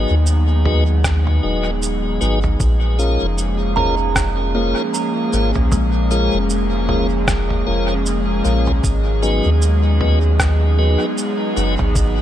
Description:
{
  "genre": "ambient dub",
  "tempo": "77 BPM",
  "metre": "4/4",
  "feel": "swing 58% on 16ths",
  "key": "G# dorian",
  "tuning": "A4 = 436 Hz",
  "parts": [
    { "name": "airy breathy pad", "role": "sustained chords", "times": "0.0-12.2 s", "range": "E#3 to G#4", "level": "-22 LUFS", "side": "right 1 dB", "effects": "chorus" },
    { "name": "tonewheel organ", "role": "stabs", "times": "0.0-11.7 s", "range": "F#3 to A#4", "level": "-23 LUFS", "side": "left 3 dB", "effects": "slow rotary speaker, dub echo" },
    { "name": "soft dub sub bass", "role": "bass", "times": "0.0-12.2 s", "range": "D#1 to D#2", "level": "-17 LUFS", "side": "equal", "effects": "none" },
    { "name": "lo-fi sampler-style drum kit", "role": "drums", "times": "0.3-12.1 s", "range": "cabasa, rim click, toms", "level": "-25 LUFS", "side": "right 1 dB", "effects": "dub echo" },
    { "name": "electronic kick drum", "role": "drums", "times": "1.0-12.1 s", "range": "none", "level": "-21 LUFS", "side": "equal", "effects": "none" },
    { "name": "kalimba", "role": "arpeggios", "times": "3.8-7.8 s", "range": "G#3 to A#5", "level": "-25 LUFS", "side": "right 3 dB", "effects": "vintage 12-bit sampler grit, tape echo" }
  ],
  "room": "light reverb, digital ambience",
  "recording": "none",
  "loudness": "-15 LUFS",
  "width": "side -11 dB against mid",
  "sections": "0.0-12.2 A section",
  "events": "none",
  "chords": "0.0 G#m7; 2.6 A#m7; 8.8 G#m7"
}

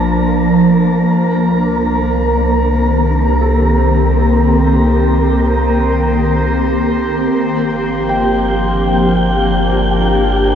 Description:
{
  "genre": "ambient",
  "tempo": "77 BPM",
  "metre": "4/4",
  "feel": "straight",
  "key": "unclear",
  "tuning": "A4 = 440 Hz",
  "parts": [
    { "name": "ethereal airy pad", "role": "sustained chords", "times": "0.0-10.6 s", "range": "Eb3 to A5", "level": "-14 LUFS", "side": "equal", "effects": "ensemble chorus, built-in reverb, phaser, shimmer reverb" },
    { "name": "felt-muted upright piano", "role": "arpeggios", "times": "0.0-10.6 s", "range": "A4 to G5", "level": "-24 LUFS", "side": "left 1 dB", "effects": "ping-pong delay, shimmer reverb" },
    { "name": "warm sub bass", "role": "bass", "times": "0.0-10.6 s", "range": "G1 to C2", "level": "-17 LUFS", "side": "equal", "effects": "none" },
    { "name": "analog drone", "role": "drone", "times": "2.8-10.6 s", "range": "Bb3 to C5", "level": "-25 LUFS", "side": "equal", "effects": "chorus" },
    { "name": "wind-like tuned noise texture", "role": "texture", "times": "0.0-10.6 s", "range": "Bb3 to G5", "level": "-18 LUFS", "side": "equal", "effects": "built-in reverb, shimmer reverb" }
  ],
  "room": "wet cathedral reverb, RT60 5.0 s",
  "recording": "nothing above 7.5 kHz",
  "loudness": "-11 LUFS",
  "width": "side -8 dB against mid",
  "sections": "0.0-10.6 A section",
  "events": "fade-in on felt piano 0.0-10.6; fade-in on synth drone 0.0-10.6",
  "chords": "0.0 Bbmaj9; 1.1 Cm7; 7.3 Gm9"
}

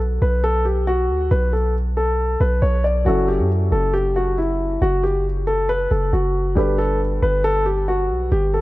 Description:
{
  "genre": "hip hop, trap",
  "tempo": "137 BPM",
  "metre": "4/4",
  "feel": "half-time",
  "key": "F# phrygian",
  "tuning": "A4 = 440 Hz",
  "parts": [
    { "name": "warm 808-style bass", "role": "bass", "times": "0.0-8.6 s", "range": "F#1 to F#2", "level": "-20 LUFS", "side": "equal", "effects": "none" },
    { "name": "dark concert grand piano", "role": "melody", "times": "0.2-8.6 s", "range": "E4 to D5", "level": "-20 LUFS", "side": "left 1 dB", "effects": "ping-pong delay" },
    { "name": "dark concert grand piano", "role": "accompaniment", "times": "3.0-8.6 s", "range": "F#3 to B4", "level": "-26 LUFS", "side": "equal", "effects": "none" }
  ],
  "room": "light reverb, small room ambience",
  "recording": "worn, warbling old tape, cassette tape, warbly pitch drift",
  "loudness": "-17 LUFS",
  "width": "side -18 dB against mid",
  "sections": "0.0-3.1 A section; 3.1-8.6 B section",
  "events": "break 0.0-1.3",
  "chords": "0.0 B7(no3); 3.1 F#m7; 6.6 Gadd9"
}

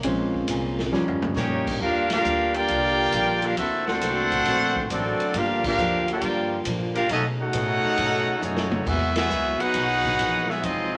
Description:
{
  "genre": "jazz, big band swing",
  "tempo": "136 BPM",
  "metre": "4/4",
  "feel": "swing 68% on 8ths",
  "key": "unclear",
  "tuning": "A4 = 440 Hz",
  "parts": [
    { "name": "picked steel-string acoustic guitar", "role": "accompaniment", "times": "0.0-11.0 s", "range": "G2 to G#4", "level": "-37 LUFS", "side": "equal", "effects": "none" },
    { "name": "warm baby grand piano", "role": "accompaniment", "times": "0.0-1.6 s", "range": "F3 to Db4", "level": "-29 LUFS", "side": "equal", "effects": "none" },
    { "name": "dark trombone section", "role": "sustained chords", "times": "0.0-11.0 s", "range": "Bb2 to F#4", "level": "-36 LUFS", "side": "equal", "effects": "none" },
    { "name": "upright bass", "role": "bass", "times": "0.0-11.0 s", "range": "F1 to B2", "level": "-35 LUFS", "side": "equal", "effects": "none" },
    { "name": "swinging big-band drum kit", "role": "drums", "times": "0.0-10.8 s", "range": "crash cymbal, hi-hat, kick drum, ride cymbal, snare drum, toms", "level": "-34 LUFS", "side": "equal", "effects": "none" },
    { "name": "clear trumpet section", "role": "melody", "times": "1.4-11.0 s", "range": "A3 to G5", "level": "-26 LUFS", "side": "equal", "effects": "none" },
    { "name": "clear trombone section", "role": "second line", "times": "1.4-11.0 s", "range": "F#3 to G4", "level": "-31 LUFS", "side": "equal", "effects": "none" }
  ],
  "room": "wet studio reverb, RT60 0.8 s",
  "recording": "none",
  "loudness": "-24 LUFS",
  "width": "mono",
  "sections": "0.0-1.8 A section; 1.8-11.0 B section",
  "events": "grand piano solo 0.0-1.8; drum fill 0.9-1.4, 8.4-8.9; band accent 2.0, 5.6, 9.1",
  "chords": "0.0 Bbm7; 0.9 Eb7; 1.8 Ebmaj9; 3.6 D7b13; 5.3 Gm7; 7.1 B13; 8.9 Emaj9#11"
}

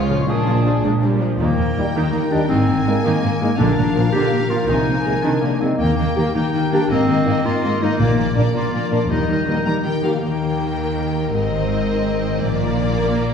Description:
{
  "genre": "cinematic",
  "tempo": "109 BPM (dotted quarters)",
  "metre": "6/8",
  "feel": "straight",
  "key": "Eb major",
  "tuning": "A4 = 440 Hz",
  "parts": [
    { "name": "warm symphonic violin section", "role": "melody", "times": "0.0-13.3 s", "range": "D4 to Bb5", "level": "-28 LUFS", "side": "left 5 dB", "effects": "none" },
    { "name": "warm cor anglais", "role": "second line", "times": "0.0-0.8 s", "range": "G#4 to C#5", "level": "-29 LUFS", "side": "right 3 dB", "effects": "none" },
    { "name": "dark trombone section", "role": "sustained chords", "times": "0.0-1.2 s", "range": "G#3 to D4", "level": "-27 LUFS", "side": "right 2 dB", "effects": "none" },
    { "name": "concert harp", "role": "arpeggios", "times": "0.0-13.3 s", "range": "Ab2 to E#5", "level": "-24 LUFS", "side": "left 5 dB", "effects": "none" },
    { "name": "rich chamber double bass section", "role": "bass", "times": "0.0-13.3 s", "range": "Ab1 to Eb2", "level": "-27 LUFS", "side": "right 3 dB", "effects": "none" },
    { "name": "warm symphonic cello section", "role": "bass", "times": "0.0-13.3 s", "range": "C#2 to Eb3", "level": "-24 LUFS", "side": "right 2 dB", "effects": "none" },
    { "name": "warm studio violin section", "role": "second line", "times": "0.1-13.3 s", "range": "G#3 to Bb4", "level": "-26 LUFS", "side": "equal", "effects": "none" },
    { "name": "rich symphonic viola section", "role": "accompaniment", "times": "0.1-13.3 s", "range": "C#3 to C4", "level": "-26 LUFS", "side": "right 3 dB", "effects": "none" },
    { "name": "bright clarinet", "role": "second line", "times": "1.4-10.0 s", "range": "Bb3 to G4", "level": "-22 LUFS", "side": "left 1 dB", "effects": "none" },
    { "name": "mellow French horn section", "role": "sustained chords", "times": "1.8-10.1 s", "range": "G3 to Ab4", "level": "-26 LUFS", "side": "left 2 dB", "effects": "none" },
    { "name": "timpani", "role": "percussion", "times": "3.6-4.1, 8.0-8.5 s", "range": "Bb2", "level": "-25 LUFS", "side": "equal", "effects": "none" }
  ],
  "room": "wet scoring stage reverb, RT60 1.7 s",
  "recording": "heard from further back in the room",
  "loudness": "-16 LUFS",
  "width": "side -7 dB against mid",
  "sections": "0.0-1.4 A section; 1.4-10.2 B section; 10.2-13.3 C section",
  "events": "none",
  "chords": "0.3 A#7; 1.4 Eb; 2.5 Abadd9; 3.6 Bb; 4.7 Abadd9/C; 5.8 Eb; 6.9 Abadd9; 8.0 Bb; 9.1 Eb; 11.3 Abadd9; 12.4 Bb"
}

